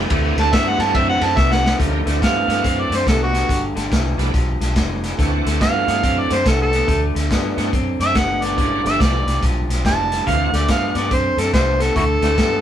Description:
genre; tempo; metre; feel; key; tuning
electric blues shuffle; 142 BPM; 4/4; swing 63% on 8ths; D mixolydian; A4 = 440 Hz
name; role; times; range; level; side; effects
bright tonewheel organ; accompaniment; 0.0-12.4 s; E3 to G4; -25 LUFS; right 5 dB; slow rotary speaker, overdrive, chorus vibrato
electric guitar through a small old amp; riff; 0.0-12.6 s; G2 to C4; -24 LUFS; left 2 dB; spring reverb
vintage muted fingered electric bass; bass; 0.0-12.6 s; F1 to G2; -22 LUFS; equal; none
crunchy breakbeat drum kit; drums; 0.1-12.5 s; hi-hat, kick drum, ride cymbal, snare drum; -21 LUFS; equal; none
overdriven harmonica; melody; 0.4-12.6 s; E4 to A5; -19 LUFS; right 1 dB; none
room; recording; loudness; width
light reverb; band playing live in one room; -15 LUFS; side -10 dB against mid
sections
0.0-1.8 A section; 1.8-12.6 B section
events
harmonica solo 0.0-1.8; drum fill 1.4-1.8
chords
0.1 D7; 3.5 G7; 5.2 D7; 8.6 G7; 10.3 D7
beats
| 0.11 0.53 0.95 1.38 | 1.80 2.22 2.65 3.07 | 3.49 3.92 4.34 4.76 | 5.18 5.61 6.03 6.46 | 6.88 7.30 7.72 8.15 | 8.57 8.99 9.42 9.84 | 10.26 10.69 11.11 11.53 | 11.96 12.38

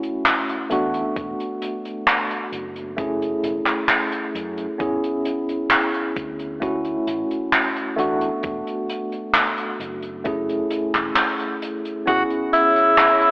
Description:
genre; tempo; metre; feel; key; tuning
vaporwave; 66 BPM; 4/4; straight; A major; A4 = 441 Hz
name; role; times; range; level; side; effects
bright tine electric piano; accompaniment; 0.0-13.3 s; A3 to G#4; -24 LUFS; equal; medium tremolo, wide subtle chorus, analog delay
open jazz drum kit; drums; 0.0-13.3 s; handclaps, hi-hat; -20 LUFS; equal; gated reverb
fretless electric bass; bass; 0.7-12.2 s; E1 to F#2; -38 LUFS; equal; none
electronic kick drum; drums; 1.2-12.3 s; none; -31 LUFS; equal; none
bright tenor saxophone; melody; 12.1-13.3 s; E4 to F#4; -15 LUFS; equal; none
warbly tape-like pad; sustained chords; 12.6-13.3 s; G#4 to B5; -26 LUFS; left 1 dB; chorus, built-in reverb, phaser
room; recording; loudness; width
wet concert hall reverb, RT60 2.4 s; telephone sound; -19 LUFS; side -26 dB against mid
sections
0.0-13.3 A section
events
none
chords
0.0 Dmaj9 (rootless); 0.7 E9sus4; 3.0 F#m9; 4.8 Amaj9 (rootless); 6.6 Dmaj9; 8.0 E9sus4; 10.3 F#m9; 12.1 Amaj9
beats
0.25 | 1.16 2.07 2.98 3.89 | 4.80 5.71 6.62 7.53 | 8.44 9.35 10.25 11.16 | 12.07 12.98

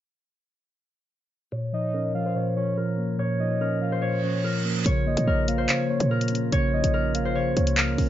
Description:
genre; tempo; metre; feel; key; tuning
hip hop, drill; 144 BPM; 4/4; half-time; Bb minor; A4 = 440 Hz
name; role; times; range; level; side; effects
Celtic harp; melody; 1.5-8.1 s; Bb4 to Db5; -29 LUFS; equal; low-pass filter
mellow tine electric piano; accompaniment; 1.5-8.1 s; Bb2 to Db5; -27 LUFS; left 1 dB; slow stereo tremolo, low-pass filter
soft octave-layered synth lead; second line; 1.7-7.8 s; Db5 to F5; -32 LUFS; left 1 dB; chorus, analog delay
reverse cymbal; sound effects; 4.2-4.9 s; none; -33 LUFS; right 6 dB; none
pipe organ, stopped flute; sustained chords; 4.9-8.1 s; Db3 to F4; -33 LUFS; right 3 dB; none
short 808-style bass; bass; 4.9-8.1 s; A1 to Bb2; -25 LUFS; equal; none
drill drum kit; drums; 4.9-8.1 s; handclaps, hi-hat; -26 LUFS; equal; none
room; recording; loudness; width
light reverb; nothing above 7.5 kHz; -22 LUFS; side -12 dB against mid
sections
1.5-4.9 A section; 4.9-8.1 B section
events
filter sweep 1.5-4.9; reverse cymbal 4.2-4.9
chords
1.5 Bbm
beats
| 1.52 1.94 2.36 2.77 | 3.19 3.61 4.02 4.44 | 4.86 5.27 5.69 6.11 | 6.52 6.94 7.36 7.77

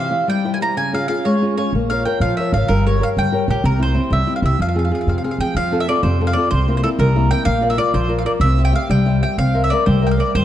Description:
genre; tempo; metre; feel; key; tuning
italian folk, Italian serenade; 125 BPM (dotted quarters); 6/8; rubato; F harmonic minor; A4 = 440 Hz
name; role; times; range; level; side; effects
mandolin; melody; 0.0-10.4 s; G4 to Bb5; -21 LUFS; right 1 dB; none
flamenco guitar; accompaniment; 0.0-10.4 s; C3 to E5; -20 LUFS; left 2 dB; none
upright bass; bass; 1.7-10.4 s; G1 to F3; -18 LUFS; equal; none
room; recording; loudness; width
moderate concert hall reverb, RT60 2.6 s; dark, warm production; -15 LUFS; side -11 dB against mid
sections
0.0-5.6 A section; 5.6-10.4 B section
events
none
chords
0.0 C; 0.8 Db; 1.7 Bbm; 2.7 Gdim; 3.6 C; 4.6 Fm; 5.6 F; 6.5 C7; 7.5 Bb; 8.4 C; 9.4 C7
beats
0.30 | 0.78 1.25 | 1.74 2.22 | 2.70 3.17 | 3.64 4.12 | 4.60 5.08 | 5.57 6.04 | 6.52 6.99 | 7.47 7.94 | 8.42 8.90 | 9.39 9.87 | 10.35

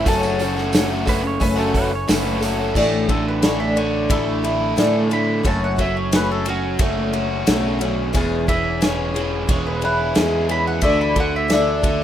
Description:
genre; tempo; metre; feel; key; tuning
folk rock and heartland rock; 89 BPM; 4/4; straight; A major; A4 = 441 Hz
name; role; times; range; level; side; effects
mandolin; melody; 0.0-12.0 s; C#4 to B5; -25 LUFS; right 2 dB; none
picked twelve-string acoustic guitar; accompaniment; 0.0-12.0 s; F#2 to A4; -23 LUFS; left 3 dB; none
biting overdriven guitar; riff; 0.0-12.0 s; E2 to F#4; -23 LUFS; right 1 dB; none
modern bright picked electric bass; bass; 0.0-12.0 s; E1 to A2; -25 LUFS; right 1 dB; none
natural country drum kit; drums; 0.1-12.0 s; crash cymbal, hi-hat, kick drum, ride cymbal, snare drum; -21 LUFS; equal; none
tambourine; percussion; 0.1-2.6 s; none; -36 LUFS; right 8 dB; none
pedal steel guitar; second line; 1.1-2.8 s; A4 to C#5; -28 LUFS; right 6 dB; none
room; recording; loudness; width
light reverb, small room ambience; rough home demo mix; -17 LUFS; side -10 dB against mid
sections
0.0-2.8 A section; 2.8-12.0 B section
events
mandolin solo 2.8-12.0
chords
0.1 F#m; 2.8 Asus4; 5.5 F#m; 8.1 E6; 10.8 Dsus2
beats
| 0.06 0.73 1.41 2.08 | 2.76 3.43 4.11 4.78 | 5.45 6.13 6.80 7.48 | 8.15 8.82 9.49 10.17 | 10.84 11.51

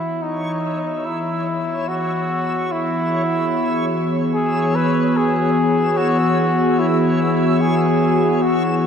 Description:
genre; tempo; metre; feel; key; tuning
ambient; 73 BPM; 4/4; straight; E major; A4 = 440 Hz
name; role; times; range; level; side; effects
warm flugelhorn; melody; 0.0-8.9 s; D#4 to B4; -21 LUFS; equal; shimmer reverb, diffuse ambient delay
warm analog pad; sustained chords; 0.0-8.9 s; E3 to C#5; -19 LUFS; left 1 dB; chorus, shimmer reverb
backwards swelling texture; texture; 0.3-8.9 s; C#5 to E6; -28 LUFS; left 1 dB; built-in reverb, shimmer reverb
room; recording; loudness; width
wet cathedral reverb, RT60 6.0 s; none; -16 LUFS; side -7 dB against mid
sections
0.0-8.9 A section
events
filter sweep on analog synth pad 0.0-8.9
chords
0.0 E6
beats
0.21 1.04 1.87 | 2.70 3.53 4.35 5.17 | 5.99 6.80 7.62 8.45

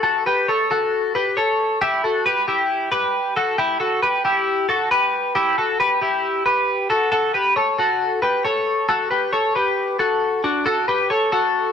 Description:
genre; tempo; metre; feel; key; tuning
indie pop; 136 BPM; 4/4; straight; D major; A4 = 439 Hz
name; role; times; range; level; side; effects
twelve-string electric guitar; solo; 0.0-11.7 s; D4 to C#5; -17 LUFS; left 1 dB; lush chorus
room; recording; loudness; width
moderate large studio reverb, RT60 1.2 s; none; -17 LUFS; side -7 dB against mid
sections
0.0-3.6 A section; 3.6-11.7 B section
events
none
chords
0.0 F#madd11; 1.8 A5; 6.9 Dmaj7 (rootless); 10.7 F#madd11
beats
| 0.04 0.48 0.92 1.37 | 1.81 2.26 2.70 3.14 | 3.58 4.03 4.47 4.91 | 5.35 5.79 6.24 6.68 | 7.12 7.56 8.00 8.44 | 8.89 9.33 9.77 10.21 | 10.65 11.10 11.54

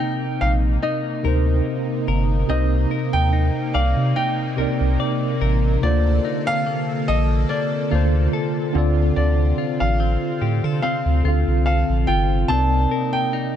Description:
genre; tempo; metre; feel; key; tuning
contemporary R&B; 72 BPM; 4/4; swing 54% on 16ths; C dorian; A4 = 436 Hz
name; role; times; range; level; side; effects
warm baby grand piano; melody; 0.0-13.6 s; D5 to A5; -25 LUFS; equal; none
tine electric piano; accompaniment; 0.0-13.6 s; C3 to F5; -24 LUFS; right 1 dB; medium stereo tremolo
warm analog pad; sustained chords; 0.0-13.6 s; C3 to A4; -29 LUFS; right 2 dB; chorus
direct-recorded clean electric guitar; arpeggios; 0.0-13.6 s; D3 to D5; -28 LUFS; left 10 dB; none
warm sub bass; bass; 0.4-12.9 s; G1 to D3; -19 LUFS; equal; none
room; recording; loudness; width
light reverb, digital ambience; dark, warm production; -18 LUFS; side -10 dB against mid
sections
0.0-13.6 A section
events
none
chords
0.0 Cm9; 5.8 Bbmaj7; 8.7 Dm7; 12.5 Cm9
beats
0.00 0.83 1.67 | 2.50 3.33 4.17 5.00 | 5.83 6.67 7.50 8.33 | 9.17 10.00 10.83 11.67 | 12.50 13.33

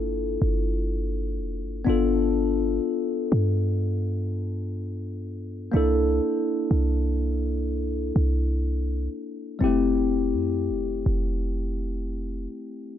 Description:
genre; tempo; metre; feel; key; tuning
contemporary R&B; 62 BPM; 4/4; straight; unclear; A4 = 440 Hz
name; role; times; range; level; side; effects
tine electric piano; accompaniment; 0.0-13.0 s; G3 to A4; -26 LUFS; left 3 dB; phaser
clean 808-style bass; bass; 0.0-12.5 s; F1 to G2; -26 LUFS; equal; none
room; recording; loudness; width
light reverb; none; -23 LUFS; side -10 dB against mid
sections
0.0-13.0 A section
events
none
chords
0.0 Gm7; 1.9 G7; 5.7 C13; 9.6 Fmaj7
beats
0.90 | 1.87 2.84 3.80 4.77 | 5.74 6.71 7.67 8.64 | 9.61 10.58 11.55 12.51

